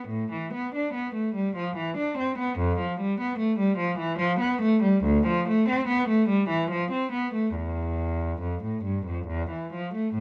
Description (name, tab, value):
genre	classical, baroque-style suite movement for unaccompanied cello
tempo	72 BPM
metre	3/4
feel	uneven beats, rubato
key	A minor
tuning	A4 = 441 Hz
part	rich cello	solo	0.0-10.2 s	D2 to D4	-27 LUFS	equal	none
room	light reverb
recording	dark, warm production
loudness	-27 LUFS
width	mono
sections	0.1-10.2 A section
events	none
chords	none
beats	| 0.09 0.95 1.77 | 2.59 3.39 4.19 | 5.04 5.89 6.71 | 7.56 8.42 9.28 | 10.15